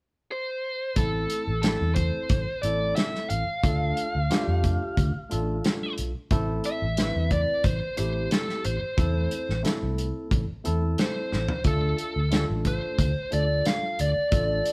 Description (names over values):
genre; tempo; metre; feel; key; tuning
straight-eighth soul blues; 90 BPM; 4/4; straight; A minor; A4 = 437 Hz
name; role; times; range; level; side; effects
biting lead guitar; melody; 0.3-14.7 s; A4 to F5; -32 LUFS; equal; overdrive
barky tine electric piano; accompaniment; 1.0-14.7 s; A3 to B4; -35 LUFS; equal; none
vintage muted fingered electric bass; bass; 1.0-14.6 s; A1 to F2; -30 LUFS; equal; none
warm soul drum kit; drums; 1.0-14.7 s; hi-hat, kick drum, snare drum, toms; -29 LUFS; equal; none
room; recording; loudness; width
moderate stone room reverb, RT60 0.9 s; band playing live in one room; -26 LUFS; mono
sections
1.0-14.7 A section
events
drum fill 11.3-11.7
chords
0.0 N.C.; 1.0 Am; 3.6 Dm; 6.3 Am; 11.7 Dm